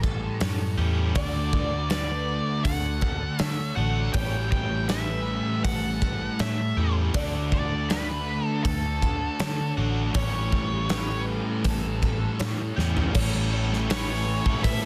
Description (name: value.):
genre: rock, shoegaze and dream pop.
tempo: 80 BPM.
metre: 4/4.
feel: straight.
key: unclear.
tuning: A4 = 440 Hz.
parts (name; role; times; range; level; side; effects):
picked twelve-string acoustic guitar; arpeggios; 0.0-14.9 s; A4 to D5; -40 LUFS; equal; analog chorus, digital delay.
crunchy overdriven guitar; riff; 0.0-14.9 s; A2 to A4; -34 LUFS; equal; reverse reverb.
thick fuzz guitar; riff; 0.0-14.8 s; A2 to D4; -34 LUFS; equal; distortion, ensemble chorus.
vintage muted picked electric bass; bass; 0.0-14.9 s; A1 to D3; -31 LUFS; equal; none.
gated 80s drum kit; drums; 0.0-14.8 s; crash cymbal, hi-hat, kick drum, snare drum, toms; -30 LUFS; equal; none.
octave-fuzz lead guitar; melody; 1.2-14.9 s; A4 to G5; -34 LUFS; equal; distortion, digital delay.
room: little or no reverb.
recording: dense, heavily limited modern master.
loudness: -26 LUFS.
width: mono.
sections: 0.0-13.1 A section; 13.1-14.9 B section.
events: drum fill 12.8-13.1.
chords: 0.0 A7; 1.2 Dmaj7; 4.1 A7; 7.1 Dmaj7; 10.2 A7.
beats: 0.41 | 1.15 1.90 2.65 3.40 | 4.15 4.90 5.65 6.40 | 7.15 7.90 8.65 9.40 | 10.15 10.90 11.65 12.40 | 13.15 13.90 14.65.